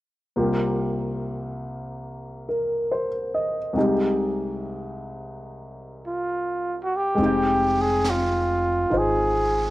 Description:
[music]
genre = jazz ballad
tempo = 70 BPM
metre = 4/4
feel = swing 66% on 8ths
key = F minor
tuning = A4 = 442 Hz
[part]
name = warm grand piano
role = accompaniment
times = 0.4-9.7 s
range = C2 to G5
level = -24 LUFS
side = left 1 dB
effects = cassette tape
[part]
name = breathy trumpet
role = melody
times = 6.1-9.7 s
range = F4 to Ab4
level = -22 LUFS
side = right 1 dB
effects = none
[part]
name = upright bass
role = bass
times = 7.2-9.7 s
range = F1 to Ab1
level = -29 LUFS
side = equal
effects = none
[part]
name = jazz brush drum kit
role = drums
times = 7.2-9.7 s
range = brushed snare drum, hi-hat, snare drum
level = -35 LUFS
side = equal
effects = none
[sound]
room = studio ambience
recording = home recording on cassette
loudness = -21 LUFS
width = side -17 dB against mid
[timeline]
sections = 0.4-7.2 A section; 7.2-9.7 B section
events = none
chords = 0.4 C7sus4; 3.8 Fm7/C; 7.2 Fm9

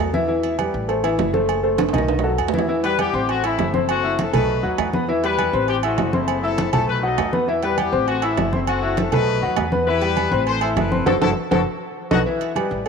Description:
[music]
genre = latin, salsa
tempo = 200 BPM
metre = 4/4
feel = straight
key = E harmonic minor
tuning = A4 = 440 Hz
[part]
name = clear concert grand piano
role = accompaniment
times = 0.0-12.9 s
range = D#3 to E6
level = -22 LUFS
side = left 1 dB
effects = none
[part]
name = upright bass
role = bass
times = 0.0-12.9 s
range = F#1 to E2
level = -26 LUFS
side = right 1 dB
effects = none
[part]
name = congas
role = percussion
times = 0.1-12.9 s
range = none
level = -26 LUFS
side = equal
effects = none
[part]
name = agogo bells and timbales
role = percussion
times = 0.4-12.9 s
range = none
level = -26 LUFS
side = right 11 dB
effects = none
[part]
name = mellow horn section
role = melody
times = 2.8-12.2 s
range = A3 to D#5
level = -24 LUFS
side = left 8 dB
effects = none
[sound]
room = moderate echo chamber reverb, RT60 2.4 s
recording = 1960s-style stereo with parts hard left and right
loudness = -18 LUFS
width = side -6 dB against mid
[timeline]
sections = 0.0-2.7 A section; 2.7-12.3 B section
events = drum fill 1.8-2.7, 11.1-12.3; band accent 11.1-12.3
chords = 0.3 Em; 0.9 Am; 1.5 F#dim; 2.1 B7; 2.7 Em; 3.3 Am; 3.9 F#m7b5; 4.5 B7; 5.1 Em; 5.7 Am; 6.3 F#m7b5; 6.9 B7; 7.5 Em; 8.1 Am; 8.7 F#m7b5; 9.3 B7; 9.9 Em; 10.5 F#m7b5; 11.7 B7; 12.3 Em

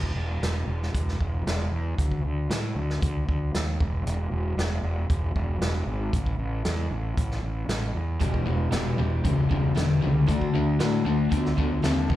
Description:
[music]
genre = classic rock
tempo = 116 BPM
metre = 4/4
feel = straight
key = unclear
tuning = A4 = 440 Hz
[part]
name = fuzz fingered electric bass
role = bass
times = 0.0-12.2 s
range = E1 to A2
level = -27 LUFS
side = equal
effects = overdrive
[part]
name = vintage drum kit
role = drums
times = 0.0-12.2 s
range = hi-hat, kick drum, snare drum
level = -29 LUFS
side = equal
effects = none
[part]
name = picked steel-string acoustic guitar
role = accompaniment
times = 8.2-12.2 s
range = E2 to G4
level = -32 LUFS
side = right 1 dB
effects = none
[part]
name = raw garage guitar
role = riff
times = 8.2-12.2 s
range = E2 to C4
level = -31 LUFS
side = right 6 dB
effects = overdrive, tremolo
[part]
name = sludgy distorted guitar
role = riff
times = 8.2-12.2 s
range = E2 to C4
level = -25 LUFS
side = left 5 dB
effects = overdrive
[sound]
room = small room ambience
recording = live gig heard through the venue's PA, club reverb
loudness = -24 LUFS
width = side -14 dB against mid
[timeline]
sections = 0.0-12.2 A section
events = none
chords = 0.0 N.C.; 2.0 D5; 3.8 N.C.; 6.1 A5; 8.2 Em; 10.3 D

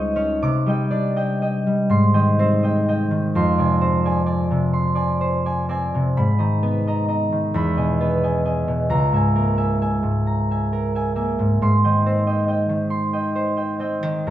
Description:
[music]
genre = classical, solo harp piece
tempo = 36-46 BPM (dotted quarters)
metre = 6/8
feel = rubato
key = unclear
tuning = A4 = 442 Hz
[part]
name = concert harp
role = solo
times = 0.0-14.3 s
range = Db2 to D6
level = -18 LUFS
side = equal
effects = none
[sound]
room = moderate recital hall reverb, RT60 1.7 s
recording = none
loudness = -18 LUFS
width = side -12 dB against mid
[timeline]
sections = 0.4-14.3 A section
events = none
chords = 0.4 Cmadd9; 1.9 Abmaj7; 3.3 Fm6; 6.1 Abmadd9; 7.5 Emaj7; 8.9 Dbm6; 11.6 Abmaj7

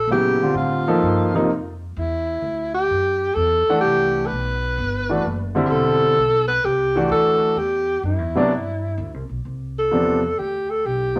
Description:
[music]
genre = jazz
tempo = 128 BPM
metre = 4/4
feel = swing 66% on 8ths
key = unclear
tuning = A4 = 440 Hz
[part]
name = breathy alto saxophone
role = melody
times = 0.0-11.2 s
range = E4 to B4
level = -22 LUFS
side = equal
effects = none
[part]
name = upright bass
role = bass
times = 0.0-11.2 s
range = E1 to Bb2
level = -30 LUFS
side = equal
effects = none
[part]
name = warm grand piano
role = accompaniment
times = 0.1-11.2 s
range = C3 to Gb5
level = -23 LUFS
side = equal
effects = none
[sound]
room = moderate studio reverb, RT60 0.8 s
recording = none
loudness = -20 LUFS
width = mono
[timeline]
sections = 0.0-9.4 A section; 9.4-11.2 B section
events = alto saxophone solo 9.4-11.2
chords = 0.0 Bbmaj9; 2.0 Cmaj9

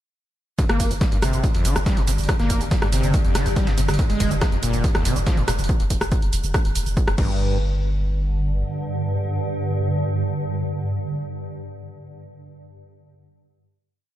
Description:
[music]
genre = driving peak-time techno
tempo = 141 BPM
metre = 4/4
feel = straight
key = G minor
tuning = A4 = 440 Hz
[part]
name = overdriven acid bass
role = riff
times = 0.6-7.6 s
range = F1 to Bb3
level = -26 LUFS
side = equal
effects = distortion, lush chorus, sidechain pumping, ping-pong delay
[part]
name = swarming drone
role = drone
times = 1.8-11.6 s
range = G2 to D3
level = -27 LUFS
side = right 1 dB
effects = built-in reverb, sidechain pumping
[part]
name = dusty soul sampler-style drum kit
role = drums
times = 0.6-5.6 s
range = hi-hat, ride cymbal, snare drum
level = -37 LUFS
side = right 2 dB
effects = sidechain pumping on cymbals, high-pass filter on cymbals, sidechain pumping on hats, high-pass filter on hats, high-pass filter on snare
[part]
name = electronic kick drum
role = drums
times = 0.6-7.3 s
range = none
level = -21 LUFS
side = equal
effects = none
[part]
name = punchy analog drum machine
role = drums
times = 0.6-7.3 s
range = crash cymbal, hi-hat, rim click, shaker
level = -27 LUFS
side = right 1 dB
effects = sidechain pumping on hats, sidechain pumping on perc, sidechain pumping on cymbals
[part]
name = saturated sub bass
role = bass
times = 0.7-8.6 s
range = F1 to G1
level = -24 LUFS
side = equal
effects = overdrive, sidechain pumping, low-pass filter
[sound]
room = light reverb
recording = lossy compression artefacts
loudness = -19 LUFS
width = side -12 dB against mid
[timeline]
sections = 0.6-7.4 drop; 7.4-10.8 final hit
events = drop 0.6-7.4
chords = 0.6 Gm; 4.0 N.C.; 7.2 G5

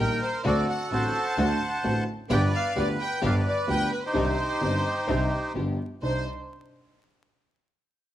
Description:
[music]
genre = tango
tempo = 129 BPM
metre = 4/4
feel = rubato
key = unclear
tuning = A4 = 436 Hz
[part]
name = bandoneon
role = melody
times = 0.0-6.3 s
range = Eb4 to A5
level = -28 LUFS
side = right 2 dB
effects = none
[part]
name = bright studio violin section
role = second line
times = 0.0-6.2 s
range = B4 to A5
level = -33 LUFS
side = left 2 dB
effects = none
[part]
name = warm concert grand piano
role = accompaniment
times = 0.0-6.2 s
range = G1 to C5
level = -29 LUFS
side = left 2 dB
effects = none
[part]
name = warm symphonic string section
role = stabs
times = 0.0-6.2 s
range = Bb3 to C5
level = -35 LUFS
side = right 3 dB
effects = none
[part]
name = clear double bass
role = bass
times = 0.0-6.2 s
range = G1 to D2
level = -29 LUFS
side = right 1 dB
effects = none
[sound]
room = light reverb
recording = vinyl crackle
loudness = -24 LUFS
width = side -12 dB against mid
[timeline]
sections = 0.0-6.0 A section; 6.0-7.9 B section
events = none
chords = 0.4 D7; 2.3 G7; 4.1 Cmadd9; 5.6 G7; 6.0 Cmadd9

